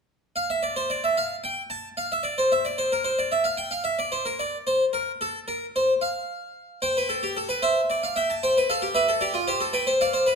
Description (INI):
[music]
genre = classical, baroque-style 3-part fugue for harpsichord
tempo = 74 BPM (dotted quarters)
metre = 12/8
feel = straight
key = unclear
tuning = A4 = 440 Hz
[part]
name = harpsichord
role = solo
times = 0.4-10.4 s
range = F4 to A5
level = -22 LUFS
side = equal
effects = none
[sound]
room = wet recital hall reverb, RT60 1.2 s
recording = none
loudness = -22 LUFS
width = side -5 dB against mid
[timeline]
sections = 0.4-10.4 A section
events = none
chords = 0.4 N.C.; 6.8 C